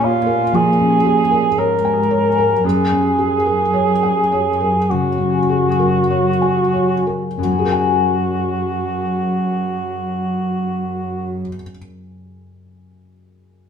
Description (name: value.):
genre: cinematic.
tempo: 46-60 BPM.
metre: 4/4.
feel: rubato.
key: F# major.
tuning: A4 = 439 Hz.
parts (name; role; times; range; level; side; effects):
dark cor anglais; melody; 0.0-11.4 s; E#4 to A#4; -18 LUFS; right 3 dB; none.
felt-muted upright piano; accompaniment; 0.0-13.7 s; F#2 to G#5; -22 LUFS; left 1 dB; none.
concert harp; arpeggios; 0.0-11.8 s; F#2 to G#5; -23 LUFS; left 11 dB; none.
muted studio cello section; bass; 0.0-11.4 s; F#2 to A#2; -22 LUFS; equal; none.
room: wet stone room reverb, RT60 0.9 s.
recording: minimal, uncompressed stereo recording.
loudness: -15 LUFS.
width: side -7 dB against mid.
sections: 0.0-7.4 A section; 7.4-12.4 B section.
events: slowing down 0.0-7.4.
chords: 0.0 A#m7; 2.6 F#add9.